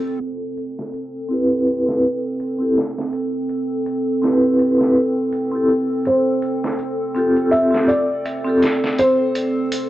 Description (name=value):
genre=trip hop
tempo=82 BPM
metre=4/4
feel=swing 56% on 16ths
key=A minor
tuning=A4 = 440 Hz
part: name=warbly tape-like pad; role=sustained chords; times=0.0-9.9 s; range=C4 to A4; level=-22 LUFS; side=right 1 dB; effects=chorus, built-in reverb
part: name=trip hop sampler-style drum kit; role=drums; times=0.2-9.9 s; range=hi-hat, snare drum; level=-28 LUFS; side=equal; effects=high-pass filter on snare, studio reverb, high-pass filter on hats, high-pass filter on kick
part: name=vibraphone with medium hard mallets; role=accompaniment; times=1.3-8.6 s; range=C4 to B4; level=-18 LUFS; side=equal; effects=tremolo, vintage 12-bit sampler grit, tape echo
part: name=felt-muted upright piano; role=melody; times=6.1-9.9 s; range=C5 to E5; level=-20 LUFS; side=equal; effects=dub echo
room=light reverb, small room reverb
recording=dry, gritty hardware recording, transformer saturation, vinyl crackle, low-pass filter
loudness=-16 LUFS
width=side -14 dB against mid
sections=0.2-9.9 A section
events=break 0.0; filter sweep 0.2-9.9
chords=0.2 Am7; 6.1 Fadd9